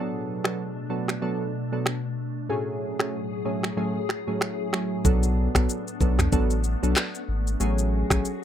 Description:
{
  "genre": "afrobeats",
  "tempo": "94 BPM",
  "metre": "4/4",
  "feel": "swing 58% on 16ths",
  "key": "unclear",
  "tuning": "A4 = 440 Hz",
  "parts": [
    { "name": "glassy digital keys", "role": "accompaniment", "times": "0.0-8.3 s", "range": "A2 to A4", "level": "-28 LUFS", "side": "right 2 dB", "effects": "chorus" },
    { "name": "glassy FM pad", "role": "sustained chords", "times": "0.0-8.4 s", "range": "A2 to G#4", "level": "-33 LUFS", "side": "left 2 dB", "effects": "ensemble chorus, built-in reverb" },
    { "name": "afro-pop drum kit", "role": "drums", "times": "0.4-8.4 s", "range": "finger snaps, handclaps, kick drum, rim click, shaker, toms", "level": "-24 LUFS", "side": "equal", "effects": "none" },
    { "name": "warm sub bass", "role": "bass", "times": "5.0-8.2 s", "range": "G#1 to B1", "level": "-24 LUFS", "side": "left 1 dB", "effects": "none" }
  ],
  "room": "little or no reverb",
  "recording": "none",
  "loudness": "-23 LUFS",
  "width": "side -10 dB against mid",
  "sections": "0.0-5.0 A section; 5.0-8.4 B section",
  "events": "none",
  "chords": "0.0 Bm7; 2.5 F#madd9/A; 5.0 Bm7; 7.6 F#madd9",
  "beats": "0.58 1.22 1.86 | 2.50 3.13 3.77 4.41 | 5.05 5.69 6.33 6.96 | 7.60 8.24"
}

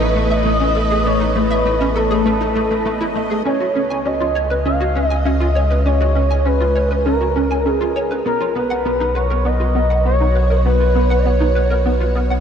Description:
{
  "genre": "ambient, sequencer-driven space music",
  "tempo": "100 BPM",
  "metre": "4/4",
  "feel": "straight",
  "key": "unclear",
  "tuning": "A4 = 440 Hz",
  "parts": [
    { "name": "expressive synth lead", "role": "melody", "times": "0.0-11.9 s", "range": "G#4 to E#5", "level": "-19 LUFS", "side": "equal", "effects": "wide subtle chorus, analog delay" },
    { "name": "phased string machine", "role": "sustained chords", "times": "0.0-12.4 s", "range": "C#3 to D#5", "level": "-24 LUFS", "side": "left 1 dB", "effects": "ensemble chorus, phaser" },
    { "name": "hollow square pluck", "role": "riff", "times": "0.0-12.4 s", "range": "A3 to G#5", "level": "-22 LUFS", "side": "right 1 dB", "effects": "ensemble chorus, cassette tape, analog delay" },
    { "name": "round analog bass", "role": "bass", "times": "0.0-12.4 s", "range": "A1 to C#2", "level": "-19 LUFS", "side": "equal", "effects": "none" },
    { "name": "pulsing gated texture", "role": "texture", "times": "0.0-3.5 s", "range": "B3 to B4", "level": "-33 LUFS", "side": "equal", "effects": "none" }
  ],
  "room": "wet huge ambient reverb, RT60 7.3 s",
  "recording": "dreamy mix soaked in reverb",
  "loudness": "-15 LUFS",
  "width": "side -8 dB against mid",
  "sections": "0.0-3.5 A section; 3.5-12.4 B section",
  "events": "fade-in on string machine 3.5-12.4",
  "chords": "0.0 A5; 3.5 C#sus2; 8.3 B",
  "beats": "0.46 | 1.05 1.66 2.25 2.85 | 3.46 4.05 4.66 5.25 | 5.86 6.46 7.05 7.66 | 8.26 8.86 9.46 10.05 | 10.65 11.26 11.86"
}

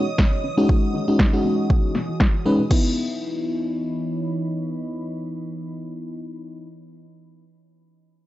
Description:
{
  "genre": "deep house",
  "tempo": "119 BPM",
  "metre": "4/4",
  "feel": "swing 54% on 16ths",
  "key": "C# minor",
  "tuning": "A4 = 442 Hz",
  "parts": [
    { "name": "mellow FM electric piano", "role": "stabs", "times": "0.0-6.7 s", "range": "G#3 to B4", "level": "-23 LUFS", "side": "left 1 dB", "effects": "chorus, cassette tape, sidechain pumping, analog delay" },
    { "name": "deep dark ambient pad", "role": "texture", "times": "0.0-6.9 s", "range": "E3 to B5", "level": "-32 LUFS", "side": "right 2 dB", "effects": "chorus, built-in reverb, sidechain pumping" },
    { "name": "string machine, violins", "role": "texture", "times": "0.0-2.7 s", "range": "D#6", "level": "-38 LUFS", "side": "right 1 dB", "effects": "ensemble chorus, sidechain pumping" },
    { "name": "warbly dusty pluck", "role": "arpeggios", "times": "0.2-2.9 s", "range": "B3 to E4", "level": "-32 LUFS", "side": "left 2 dB", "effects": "none" },
    { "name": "deep house drum kit", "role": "drums", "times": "0.2-2.8 s", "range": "crash cymbal, snare drum", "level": "-24 LUFS", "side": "equal", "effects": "overdrive, low-pass filter on snare, low-pass filter on cymbals, low-pass filter on room" },
    { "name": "electronic kick drum", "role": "drums", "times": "0.2-2.8 s", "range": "none", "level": "-19 LUFS", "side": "equal", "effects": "overdrive" }
  ],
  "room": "light reverb",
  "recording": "dry, gritty hardware recording, nothing above 7.7 kHz",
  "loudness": "-20 LUFS",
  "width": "side -15 dB against mid",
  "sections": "0.0-2.7 A section; 2.7-6.7 B section",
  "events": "filter sweep on drum 0.0-2.7",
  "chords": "0.0 Emaj13; 2.7 C#m9",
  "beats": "0.19 | 0.69 1.20 1.70 2.21 | 2.71 3.21 3.72 4.22 | 4.73 5.23 5.73 6.24"
}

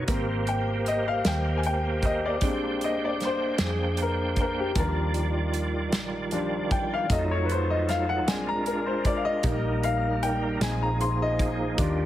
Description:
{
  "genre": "slow gospel",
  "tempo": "51 BPM (dotted quarters)",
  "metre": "6/8",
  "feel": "straight",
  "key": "unclear",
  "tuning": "A4 = 440 Hz",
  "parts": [
    { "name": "clear upright piano", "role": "accompaniment", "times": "0.0-12.1 s", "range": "F3 to C6", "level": "-28 LUFS", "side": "left 3 dB", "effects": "none" },
    { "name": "bright tonewheel organ", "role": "sustained chords", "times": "0.0-12.1 s", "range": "Eb3 to G5", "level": "-30 LUFS", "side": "right 2 dB", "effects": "fast rotary speaker, chorus vibrato" },
    { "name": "hollow-body short-scale fingered electric bass", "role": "bass", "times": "0.0-12.1 s", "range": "Ab1 to F2", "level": "-30 LUFS", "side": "equal", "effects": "none" },
    { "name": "natural country drum kit", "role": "drums", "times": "0.1-12.0 s", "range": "hi-hat, kick drum, snare drum", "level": "-29 LUFS", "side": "equal", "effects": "none" }
  ],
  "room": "light reverb",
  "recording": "heavily compressed radio sound, multiband compression",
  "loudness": "-24 LUFS",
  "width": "side -13 dB against mid",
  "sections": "0.0-12.1 A section",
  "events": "upright piano solo 0.0-12.1",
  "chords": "0.1 Abmaj9; 2.4 Bb13; 4.8 Ebmaj9; 7.1 F7b9; 8.3 Bb7; 9.4 Eb/Bb; 10.6 Bb7sus4",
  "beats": "| 0.08 1.25 | 2.42 3.59 | 4.76 5.93 | 7.10 8.27 | 9.44 10.61 | 11.78"
}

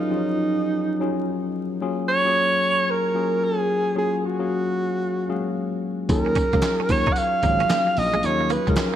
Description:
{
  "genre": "R&B, new jack swing",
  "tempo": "112 BPM",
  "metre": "4/4",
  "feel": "swing 64% on 16ths",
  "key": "Eb minor",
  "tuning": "A4 = 438 Hz",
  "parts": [
    { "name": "mellow alto saxophone", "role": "melody", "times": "0.0-9.0 s", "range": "Eb4 to Gb5", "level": "-22 LUFS", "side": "right 2 dB", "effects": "none" },
    { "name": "tine electric piano", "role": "accompaniment", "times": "0.0-9.0 s", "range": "F3 to F5", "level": "-25 LUFS", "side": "left 4 dB", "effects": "none" },
    { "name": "slap bass", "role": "bass", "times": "6.1-8.7 s", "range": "Ab1 to Eb2", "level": "-25 LUFS", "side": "right 1 dB", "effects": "none" },
    { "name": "boom bap sampler-style drum kit", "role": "drums", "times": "6.1-8.9 s", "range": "handclaps, hi-hat, kick drum, snare drum, tambourine", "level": "-25 LUFS", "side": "equal", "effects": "gated reverb" },
    { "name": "direct-recorded clean electric guitar", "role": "riff", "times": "6.3-8.7 s", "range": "Ab3 to Eb4", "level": "-31 LUFS", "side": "right 8 dB", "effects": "ensemble chorus" },
    { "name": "group handclap", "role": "percussion", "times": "6.6-8.9 s", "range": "none", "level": "-44 LUFS", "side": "right 6 dB", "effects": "none" }
  ],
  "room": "moderate lush hall reverb, RT60 2.3 s",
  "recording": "bright 1980s-style digital production, vinyl crackle",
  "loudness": "-20 LUFS",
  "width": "side -10 dB against mid",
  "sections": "0.0-9.0 A section",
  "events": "none",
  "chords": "0.0 Ebm11; 1.8 Gbmaj9; 6.1 Ebm11",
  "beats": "0.20 0.73 1.27 | 1.80 2.34 2.88 3.41 | 3.95 4.48 5.02 5.55 | 6.09 6.63 7.16 7.70 | 8.23 8.77"
}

